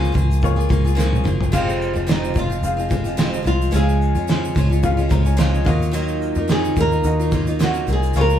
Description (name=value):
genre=acoustic pop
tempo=109 BPM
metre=4/4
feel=swing 55% on 16ths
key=unclear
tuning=A4 = 438 Hz
part: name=flamenco guitar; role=melody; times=0.0-8.4 s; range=Eb4 to Bb4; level=-24 LUFS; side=right 1 dB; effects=none
part: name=bright upright piano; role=accompaniment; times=0.0-8.4 s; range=Bb3 to Bb5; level=-28 LUFS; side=left 3 dB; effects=none
part: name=picked steel-string acoustic guitar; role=accompaniment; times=0.0-8.4 s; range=F2 to Bb4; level=-24 LUFS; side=equal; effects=none
part: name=vintage muted fingered electric bass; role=bass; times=0.0-8.4 s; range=F1 to F2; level=-20 LUFS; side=equal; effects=none
part: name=tube shaker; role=percussion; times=0.0-8.4 s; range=none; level=-41 LUFS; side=right 6 dB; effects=none
part: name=cloth-damped thuddy drum kit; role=drums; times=0.1-8.3 s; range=crash cymbal, kick drum, shaker, snare drum, toms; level=-22 LUFS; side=right 1 dB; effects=none
room=moderate studio ambience, RT60 0.5 s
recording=band playing live in one room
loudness=-16 LUFS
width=side -10 dB against mid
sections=0.0-8.4 A section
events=drum fill 1.0-1.5; upright piano fill 4.8-5.9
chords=0.0 Bbm7/Db; 1.5 Fm; 3.7 Db; 5.7 Ebmadd9